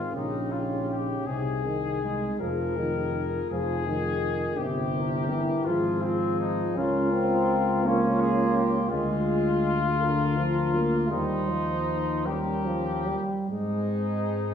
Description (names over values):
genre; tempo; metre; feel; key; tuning
classical, hymn-like piece for brass band; 42-58 BPM (dotted quarters); 6/8; rubato; unclear; A4 = 438 Hz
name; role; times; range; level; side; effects
bright trumpet section; melody; 0.0-14.5 s; C4 to Bb4; -31 LUFS; left 5 dB; none
warm flugelhorn; second line; 0.0-14.5 s; F4 to C5; -34 LUFS; right 2 dB; none
mellow euphonium; accompaniment; 0.0-14.5 s; C4 to F4; -34 LUFS; left 3 dB; none
warm trombone; accompaniment; 0.0-14.5 s; C3 to Db4; -28 LUFS; right 2 dB; none
dark tuba; bass; 0.1-14.5 s; F1 to Ab2; -30 LUFS; left 2 dB; none
room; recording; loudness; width
wet recital hall reverb, RT60 1.4 s; recorded in a church or concert hall, small room ambience; -24 LUFS; side -8 dB against mid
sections
0.0-14.5 A section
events
none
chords
0.1 Eb7/Bb; 1.3 Ab/C; 2.4 Fm7; 4.6 C7/G; 5.7 Fm/Ab; 6.8 Bbm/Db; 8.9 Bb7/D; 11.1 Eb69; 12.3 Eb7; 13.5 Ab